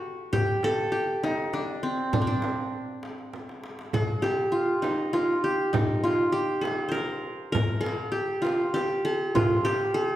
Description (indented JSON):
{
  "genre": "Arabic maqam ensemble",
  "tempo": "100 BPM",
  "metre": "3/4",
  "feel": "straight",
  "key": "D maqam hijaz, G maqam bayati from 3.9 s",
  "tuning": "A4 = 440 Hz",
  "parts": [
    { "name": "qanun", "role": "melody", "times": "0.0-10.2 s", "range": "C4 to C5", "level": "-25 LUFS", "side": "equal", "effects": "none" },
    { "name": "darbuka", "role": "percussion", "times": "0.0-10.0 s", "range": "none", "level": "-33 LUFS", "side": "left 1 dB", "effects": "none" },
    { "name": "frame drum", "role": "percussion", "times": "0.3-9.8 s", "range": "none", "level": "-33 LUFS", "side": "right 3 dB", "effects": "none" }
  ],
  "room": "wet recital hall reverb, RT60 1.5 s",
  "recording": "heard from further back in the room",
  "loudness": "-24 LUFS",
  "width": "side -13 dB against mid",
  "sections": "0.0-3.9 A section; 3.9-10.2 B section",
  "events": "drum fill 3.3-3.9",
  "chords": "none",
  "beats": "| 0.32 0.92 1.52 | 2.12 2.73 3.33 | 3.93 4.53 5.13 | 5.74 6.34 6.94 | 7.54 8.14 8.74 | 9.34 9.95"
}